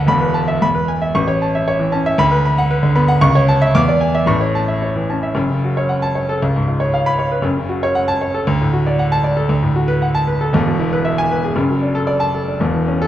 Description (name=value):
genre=classical, virtuoso piano study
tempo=116 BPM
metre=2/4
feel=rubato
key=A major, F# minor from 5.4 s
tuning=A4 = 437 Hz
part: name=clear grand piano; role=solo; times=0.0-13.1 s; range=E1 to D6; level=-14 LUFS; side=equal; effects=none
room=moderate scoring stage reverb, RT60 2.0 s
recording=worn, warbling old tape, cassette tape, warbly pitch drift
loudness=-14 LUFS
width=side -12 dB against mid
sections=0.0-5.4 A section; 5.4-13.1 B section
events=none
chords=0.1 Esus4; 0.6 E; 1.2 A; 2.2 Bm/D; 3.2 A/C#; 3.8 E7; 4.3 A; 5.4 F#m; 6.4 C#7; 7.4 F#m; 8.5 D; 9.5 Bm7/D; 10.5 E; 11.6 D/F#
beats=| 0.08 0.62 | 1.16 1.68 | 2.20 2.72 | 3.24 3.76 | 4.28 4.82 | 5.36 5.89 | 6.42 6.93 | 7.45 7.96 | 8.47 8.99 | 9.50 10.02 | 10.53 11.04 | 11.55 12.07 | 12.61